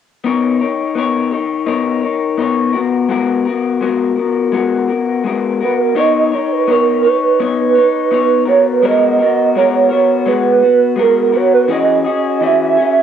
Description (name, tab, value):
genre	indie pop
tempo	84 BPM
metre	4/4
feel	straight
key	B major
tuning	A4 = 440 Hz
part	electric guitar through a small old amp	accompaniment	0.2-13.0 s	E3 to C#5	-15 LUFS	left 7 dB	lush chorus, vibrato effect
part	warbly nostalgic lead	melody	5.6-13.0 s	A#4 to E5	-12 LUFS	right 6 dB	ensemble chorus, cassette tape
room	moderate studio reverb, RT60 0.7 s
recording	home recording on cassette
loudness	-12 LUFS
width	side -8 dB against mid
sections	0.2-6.0 A section; 6.0-13.0 B section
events	none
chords	0.2 Bmaj9; 2.8 G#m9; 6.0 Bmaj9; 8.5 G#m9; 11.7 E69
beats	| 0.24 0.96 1.68 2.39 | 3.11 3.83 4.54 5.26 | 5.97 6.69 7.40 8.12 | 8.84 9.55 10.27 10.98 | 11.70 12.41